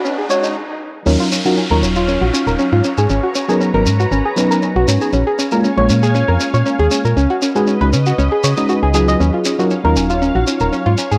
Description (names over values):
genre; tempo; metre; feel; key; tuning
deep house; 118 BPM; 4/4; swing 53% on 16ths; Eb minor; A4 = 439 Hz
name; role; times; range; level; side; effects
soft string machine; sustained chords; 0.0-11.2 s; Db4 to Bb5; -28 LUFS; equal; ensemble chorus, vintage 12-bit sampler grit, cassette tape
soft round pluck; arpeggios; 0.0-11.2 s; Db4 to Eb5; -20 LUFS; equal; chorus, cassette tape, tape echo
riser and downlifter; sound effects; 0.0-5.1 s; none; -29 LUFS; equal; none
shekere; percussion; 0.1-11.2 s; none; -27 LUFS; equal; none
mellow FM electric piano; stabs; 0.3-11.0 s; Gb3 to Eb5; -21 LUFS; equal; chorus, cassette tape, analog delay
organ-like FM bass; bass; 1.1-11.2 s; Eb1 to Db3; -18 LUFS; equal; none
room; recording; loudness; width
moderate spring reverb, RT60 1.9 s, digital ambience; home recording on cassette, high-pass filter; -15 LUFS; mono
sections
0.0-1.1 A section; 1.1-11.2 B section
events
build-up 0.0-1.1; riser 0.0-0.6; filter sweep on synth arpeggio sound 0.0-1.1; stop 0.6-1.1; drop 1.1-11.2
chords
0.0 Db9sus4; 1.1 Ebm9; 2.8 Abm11; 5.1 Bbm7; 7.2 Db9sus4; 9.2 Ebm9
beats
0.05 0.56 | 1.06 1.57 2.08 2.59 | 3.10 3.61 4.12 4.62 | 5.13 5.64 6.15 6.66 | 7.17 7.67 8.18 8.69 | 9.20 9.71 10.22 10.72